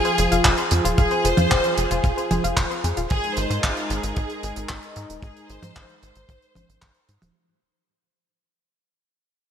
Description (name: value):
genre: italo disco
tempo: 113 BPM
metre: 4/4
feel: straight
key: unclear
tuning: A4 = 439 Hz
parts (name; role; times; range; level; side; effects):
- clear symphonic violin section; melody; 0.0-7.0 s; F4 to C5; -25 LUFS; equal; ping-pong delay
- warm analog pad; sustained chords; 0.0-7.3 s; F3 to C5; -28 LUFS; equal; lush chorus
- damped 70s drum kit; drums; 0.0-7.3 s; handclaps, hi-hat, toms; -25 LUFS; right 1 dB; gated reverb
- analog pluck; arpeggios; 0.1-3.1 s; F4 to F5; -29 LUFS; left 4 dB; chorus, cassette tape, ping-pong delay
- tight sequencer bass; bass; 0.2-7.3 s; Eb1 to Ab2; -26 LUFS; equal; none
- kick drum; drums; 0.5-6.9 s; none; -22 LUFS; equal; none
room: moderate lush hall reverb, RT60 2.7 s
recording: bright 1980s-style digital production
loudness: -19 LUFS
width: side -8 dB against mid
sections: 0.0-7.4 A section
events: fade-out 0.0-7.4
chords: 0.0 Fm; 3.1 Abadd9